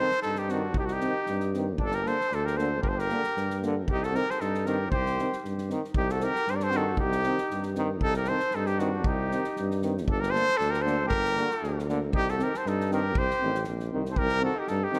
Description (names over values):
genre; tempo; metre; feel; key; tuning
balkan folk, Balkan brass band; 116 BPM; 2/4; swing 55% on 16ths; C dorian sharp4; A4 = 437 Hz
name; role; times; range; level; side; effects
warm cornet; melody; 0.0-15.0 s; F#4 to D5; -31 LUFS; equal; none
mellow trumpet; second line; 0.0-15.0 s; D4 to Bb4; -39 LUFS; equal; none
brilliant trombone; accompaniment; 0.0-15.0 s; D3 to Eb3; -39 LUFS; equal; none
warm euphonium; accompaniment; 0.0-15.0 s; Bb3 to C4; -39 LUFS; equal; none
natural country drum kit; percussion; 0.1-15.0 s; kick drum, snare drum; -36 LUFS; equal; none
clear tuba; bass; 0.2-14.8 s; G1 to G2; -33 LUFS; equal; none
room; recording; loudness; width
moderate concert hall reverb, RT60 2.3 s; none; -28 LUFS; mono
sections
0.0-6.0 A section; 6.0-14.2 A section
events
none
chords
0.0 Cm; 1.8 Gm; 3.9 Cm; 10.1 Gm; 12.1 Cm